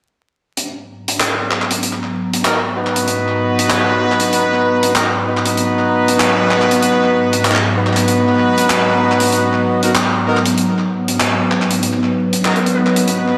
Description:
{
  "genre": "glitch hop",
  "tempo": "96 BPM",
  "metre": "4/4",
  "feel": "swing 62% on 16ths",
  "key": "G# minor",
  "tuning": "A4 = 439 Hz",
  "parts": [
    { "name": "warbly tape-like pad", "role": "sustained chords", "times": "1.0-13.4 s", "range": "G#2 to A#5", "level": "-20 LUFS", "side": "equal", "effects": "chorus, built-in reverb, phaser" },
    { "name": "big rock drum kit", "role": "drums", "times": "0.6-13.2 s", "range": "handclaps, hi-hat", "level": "-20 LUFS", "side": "equal", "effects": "tape echo" },
    { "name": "brilliant horn section", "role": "stabs", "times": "2.5-13.4 s", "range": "B3 to B4", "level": "-18 LUFS", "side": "equal", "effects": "vintage 12-bit sampler grit, low-pass filter, tape echo" }
  ],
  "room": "wet echo chamber reverb, RT60 2.1 s",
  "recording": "echo-heavy mix, vinyl crackle",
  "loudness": "-15 LUFS",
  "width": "mono",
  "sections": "0.6-13.4 A section",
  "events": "none",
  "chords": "0.6 G#m9"
}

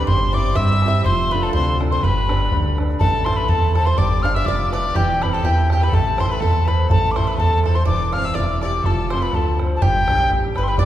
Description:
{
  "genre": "celtic folk, Celtic polka",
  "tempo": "123 BPM",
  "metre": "2/4",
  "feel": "swing 54% on 8ths",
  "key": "unclear",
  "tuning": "A4 = 442 Hz",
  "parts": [
    { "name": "wooden whistle", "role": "melody", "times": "0.0-10.9 s", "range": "G5 to F6", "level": "-21 LUFS", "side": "left 2 dB", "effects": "none" },
    { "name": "bluegrass banjo", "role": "second line", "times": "0.0-10.9 s", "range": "G4 to F5", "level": "-30 LUFS", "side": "right 4 dB", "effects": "none" },
    { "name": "bright fiddle", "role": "second line", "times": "0.0-10.9 s", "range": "G4 to F5", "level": "-32 LUFS", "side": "left 3 dB", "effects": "none" },
    { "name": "bright concert grand piano", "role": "accompaniment", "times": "0.0-10.9 s", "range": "C3 to C5", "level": "-26 LUFS", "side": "right 2 dB", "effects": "none" },
    { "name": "round analog bass", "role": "bass", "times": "0.0-10.9 s", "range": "E1 to G2", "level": "-20 LUFS", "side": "equal", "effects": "none" },
    { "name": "bodhran", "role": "percussion", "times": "0.1-10.9 s", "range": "none", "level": "-22 LUFS", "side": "right 1 dB", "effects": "none" }
  ],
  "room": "wet concert hall reverb, RT60 2.3 s",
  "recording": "recorded in a church or concert hall",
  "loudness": "-16 LUFS",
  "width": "side -12 dB against mid",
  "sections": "0.0-3.0 A section; 3.0-10.8 B section",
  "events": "none",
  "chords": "0.1 C/G; 1.1 F6; 2.0 G; 3.0 Am; 4.0 G7; 5.0 C/E; 5.9 Am; 7.9 C/E; 8.8 F; 9.8 Gadd9"
}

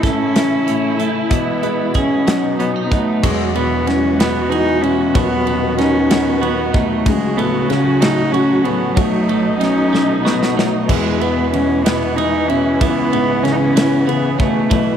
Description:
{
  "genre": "six-eight pop ballad",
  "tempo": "63 BPM (dotted quarters)",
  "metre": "6/8",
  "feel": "straight",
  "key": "E major",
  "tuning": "A4 = 441 Hz",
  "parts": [
    { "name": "rich cello", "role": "melody", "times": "0.0-15.0 s", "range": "G#3 to D#4", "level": "-18 LUFS", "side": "equal", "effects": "none" },
    { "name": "dark upright piano", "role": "accompaniment", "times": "0.0-15.0 s", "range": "D#1 to G#3", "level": "-22 LUFS", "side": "left 9 dB", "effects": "none" },
    { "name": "warm symphonic string section", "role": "sustained chords", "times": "0.0-15.0 s", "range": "B2 to F#4", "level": "-21 LUFS", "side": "right 1 dB", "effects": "none" },
    { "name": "twelve-string electric guitar", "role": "arpeggios", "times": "0.0-15.0 s", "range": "E3 to A4", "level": "-23 LUFS", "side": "right 10 dB", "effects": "none" },
    { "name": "modern studio drum kit", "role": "drums", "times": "0.0-14.9 s", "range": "crash cymbal, hi-hat, kick drum, ride cymbal, snare drum", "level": "-20 LUFS", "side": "equal", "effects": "none" }
  ],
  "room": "moderate echo chamber reverb, RT60 2.3 s",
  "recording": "1960s-style stereo with parts hard left and right",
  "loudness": "-14 LUFS",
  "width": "side -8 dB against mid",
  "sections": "0.0-3.2 A section; 3.2-15.0 B section",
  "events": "drum fill 9.9-10.9",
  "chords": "0.0 A; 1.3 E/B; 2.3 B; 3.2 Eadd9; 5.2 B/D#; 7.1 F#m/C#; 9.0 B7; 10.9 E; 12.8 C#m7"
}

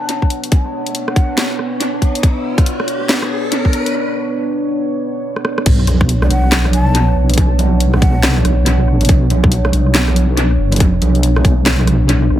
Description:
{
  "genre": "deep dubstep",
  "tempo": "140 BPM",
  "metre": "4/4",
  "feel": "swing 62% on 16ths, half-time",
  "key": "B minor",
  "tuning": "A4 = 443 Hz",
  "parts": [
    { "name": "breathy ney", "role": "melody", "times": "0.0-1.5, 6.2-8.4 s", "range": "D5 to A5", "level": "-26 LUFS", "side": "left 1 dB", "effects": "low-pass filter, dub echo" },
    { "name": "deep dark ambient pad", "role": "sustained chords", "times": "0.0-12.4 s", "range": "B3 to C#5", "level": "-20 LUFS", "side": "right 1 dB", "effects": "chorus, built-in reverb" },
    { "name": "riser and sub drop", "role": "sound effects", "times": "0.7-7.4 s", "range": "none", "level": "-25 LUFS", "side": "left 1 dB", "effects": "none" },
    { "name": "garage drum kit", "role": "drums", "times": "0.1-12.2 s", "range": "crash cymbal, handclaps, hi-hat, rim click, snare drum", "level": "-18 LUFS", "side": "equal", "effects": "analog delay" },
    { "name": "electronic kick drum", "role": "drums", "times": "0.2-11.6 s", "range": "none", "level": "-13 LUFS", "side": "equal", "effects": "none" },
    { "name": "deep soft wobble bass", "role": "bass", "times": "5.7-12.4 s", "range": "F#1 to B1", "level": "-13 LUFS", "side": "equal", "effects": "chorus" },
    { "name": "congas", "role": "percussion", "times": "5.9-12.2 s", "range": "none", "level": "-20 LUFS", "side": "right 3 dB", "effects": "dub echo" }
  ],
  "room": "light reverb",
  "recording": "echo-heavy mix",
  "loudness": "-12 LUFS",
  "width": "side -12 dB against mid",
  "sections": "0.0-5.7 A section; 5.7-12.4 B section",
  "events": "build-up 0.0-5.7; filter sweep on ney 0.0-5.7; riser 0.7-3.9; break 3.9-5.7; drum fill 5.3-5.7; drop 5.7-12.4; impact 5.7-7.4",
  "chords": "0.0 Bmadd9"
}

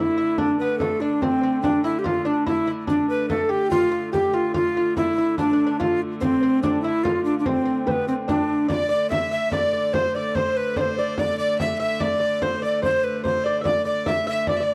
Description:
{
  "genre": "medieval dance",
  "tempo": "145 BPM",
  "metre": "3/4",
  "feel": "straight",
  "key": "D dorian",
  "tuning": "A4 = 440 Hz",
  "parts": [
    { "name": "breathy tenor recorder", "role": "melody", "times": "0.0-14.7 s", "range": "C4 to E5", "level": "-24 LUFS", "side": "equal", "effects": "slapback echo" },
    { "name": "lute", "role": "second line", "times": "0.0-14.7 s", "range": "A3 to E5", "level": "-31 LUFS", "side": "equal", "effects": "none" },
    { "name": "rich hurdy-gurdy", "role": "drone", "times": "0.0-14.7 s", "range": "D3 to A3", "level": "-34 LUFS", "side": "equal", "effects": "none" },
    { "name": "frame drum", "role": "percussion", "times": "0.4-14.7 s", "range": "none", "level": "-32 LUFS", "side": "equal", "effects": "none" },
    { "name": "rich fiddle", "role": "second line", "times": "8.7-14.7 s", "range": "B4 to E5", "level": "-33 LUFS", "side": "equal", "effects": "none" }
  ],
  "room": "light reverb",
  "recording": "dry, close 1970s-style studio recording",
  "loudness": "-22 LUFS",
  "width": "mono",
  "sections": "0.0-8.7 A section; 8.7-14.7 B section",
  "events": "none",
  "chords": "none"
}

